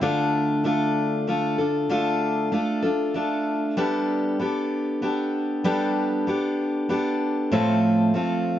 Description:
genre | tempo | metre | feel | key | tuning
country | 96 BPM | 3/4 | straight | unclear | A4 = 440 Hz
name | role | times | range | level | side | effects
picked steel-string acoustic guitar | solo | 0.0-8.6 s | A2 to A4 | -21 LUFS | equal | none
room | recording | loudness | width
light reverb | nothing above 7.5 kHz | -21 LUFS | side -11 dB against mid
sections
0.0-8.6 A section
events
none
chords
0.0 Dm; 3.8 Gadd9; 7.5 F/A

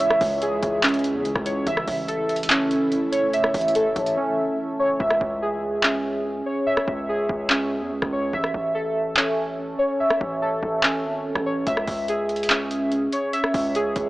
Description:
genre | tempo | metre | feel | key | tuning
hip hop, trap | 144 BPM | 4/4 | half-time | C# minor | A4 = 441 Hz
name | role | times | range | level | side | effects
ethereal airy pad | sustained chords | 0.0-5.0 s | C#3 to E4 | -35 LUFS | left 1 dB | ensemble chorus, built-in reverb, tremolo
warbly lo-fi synth keys | arpeggios | 0.0-14.1 s | C#4 to E5 | -22 LUFS | equal | chorus, phaser, low-pass filter, analog delay
booming analog drum machine | drums | 0.0-14.1 s | handclaps, hi-hat, kick drum, rim click | -24 LUFS | equal | none
distorted 808-style bass | bass | 0.2-14.1 s | G#1 to E2 | -32 LUFS | equal | distortion
room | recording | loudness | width
light reverb, digital ambience | dry, gritty hardware recording, small speaker sound | -20 LUFS | side -18 dB against mid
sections
0.0-5.0 A section; 5.0-14.1 B section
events
break 4.2-5.0; hi-hats muted 5.0-11.7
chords
0.0 C#m; 1.7 A; 5.0 C#m; 8.3 A; 11.7 C#m

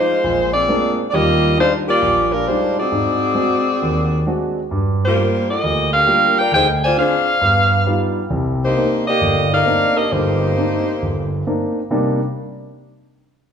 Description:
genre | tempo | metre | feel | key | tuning
jazz | 133 BPM | 4/4 | swing 67% on 8ths | C minor | A4 = 438 Hz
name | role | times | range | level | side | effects
warm saxophone section | melody | 0.0-11.5 s | G3 to Ab5 | -16 LUFS | left 1 dB | none
dark grand piano | accompaniment | 0.0-12.2 s | G1 to Gb4 | -19 LUFS | right 1 dB | none
room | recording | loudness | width
wet large studio reverb, RT60 1.5 s | band playing live in one room | -15 LUFS | side -7 dB against mid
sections
0.0-11.9 A section; 11.9-13.5 B section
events
none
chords
0.2 Bb9; 1.1 Ebmaj9; 2.9 Ab7#11; 4.7 Gm7; 6.5 Dm7b5; 7.4 Gaug7; 8.3 Cm9; 11.9 Cm7

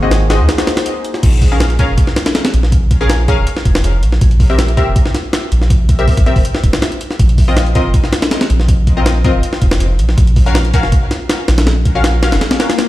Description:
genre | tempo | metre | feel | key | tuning
drum and bass, jungle | 161 BPM | 4/4 | straight | Bb minor | A4 = 440 Hz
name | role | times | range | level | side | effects
warbly tape-like pad | sustained chords | 0.0-1.2 s | Bb3 to C5 | -23 LUFS | left 1 dB | chorus, built-in reverb, vintage 12-bit sampler grit
filtered dub chord stab | stabs | 0.0-12.7 s | C4 to F5 | -20 LUFS | left 2 dB | lush chorus, dub echo
soft dub sub bass | bass | 0.0-12.4 s | E1 to Eb2 | -13 LUFS | equal | none
jungle sampler-style drum kit | drums | 0.1-12.9 s | crash cymbal, hi-hat, kick drum, snare drum | -13 LUFS | equal | none
swell | sound effects | 12.5-12.9 s | none | -19 LUFS | left 7 dB | none
room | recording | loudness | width
digital ambience | played on a big sound system in a bare room, stone room reverb | -10 LUFS | side -16 dB against mid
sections
0.0-1.2 A section; 1.2-12.9 A section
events
drop 0.0-1.2, 1.2-12.9; break 0.5-1.2; swell 12.5-12.9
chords
0.0 Ab7; 1.2 Bbm7; 4.2 C7; 7.2 F7sus4; 10.2 Gbmaj7

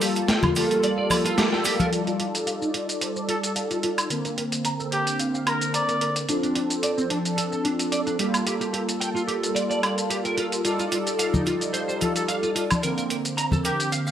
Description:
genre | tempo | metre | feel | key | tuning
nu-disco, nu disco | 110 BPM | 4/4 | swing 54% on 16ths | G minor | A4 = 440 Hz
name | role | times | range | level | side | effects
mellow synth brass | accompaniment | 0.0-14.1 s | D3 to D5 | -25 LUFS | equal | chorus, phaser, vintage 12-bit sampler grit, slapback echo
clean electric guitar | riff | 0.0-14.1 s | C4 to Bb5 | -30 LUFS | right 1 dB | ensemble chorus, low-pass filter, slapback echo
dusty soul sampler-style drum kit | drums | 0.0-14.1 s | hi-hat, shaker, snare drum, woodblock | -27 LUFS | right 1 dB | overdrive, small room reverb
cabasa and congas | percussion | 0.0-1.9, 10.7-14.1 s | none | -27 LUFS | left 1 dB | none
bright trumpet section | melody | 3.3-6.2, 12.0-13.9 s | G4 to D5 | -28 LUFS | left 1 dB | analog delay
room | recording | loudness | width
moderate lush hall reverb, RT60 1.8 s | none | -22 LUFS | side -10 dB against mid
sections
0.0-1.9 A section; 1.9-14.1 B section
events
band accent 1.4; filter sweep on clean electric guitar 1.9-14.1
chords
0.0 Gm9; 1.9 F13; 4.1 Bbadd9; 6.3 Dm7; 8.2 Gm9; 10.6 F13; 12.8 Bbadd9

